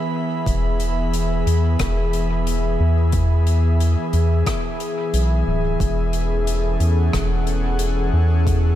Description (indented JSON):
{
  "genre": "ambient dub",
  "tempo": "90 BPM",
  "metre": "4/4",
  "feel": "swing 58% on 16ths",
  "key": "E major",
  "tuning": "A4 = 439 Hz",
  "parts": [
    { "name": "airy breathy pad", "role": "sustained chords", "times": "0.0-8.8 s", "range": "E3 to B5", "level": "-23 LUFS", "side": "equal", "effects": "chorus" },
    { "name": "round analog bass", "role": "bass", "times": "0.5-8.8 s", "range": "D1 to E2", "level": "-18 LUFS", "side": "equal", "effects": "none" },
    { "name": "electronic kick drum", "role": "drums", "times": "0.5-8.6 s", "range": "none", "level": "-24 LUFS", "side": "equal", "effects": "none" },
    { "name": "soft-mallet drum kit", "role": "drums", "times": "0.5-8.6 s", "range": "hi-hat, rim click", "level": "-32 LUFS", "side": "left 3 dB", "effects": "dub echo" }
  ],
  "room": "light reverb",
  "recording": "none",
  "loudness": "-17 LUFS",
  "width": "side -12 dB against mid",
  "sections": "0.0-8.8 A section",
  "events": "none",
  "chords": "0.0 E; 5.8 F#madd9/E"
}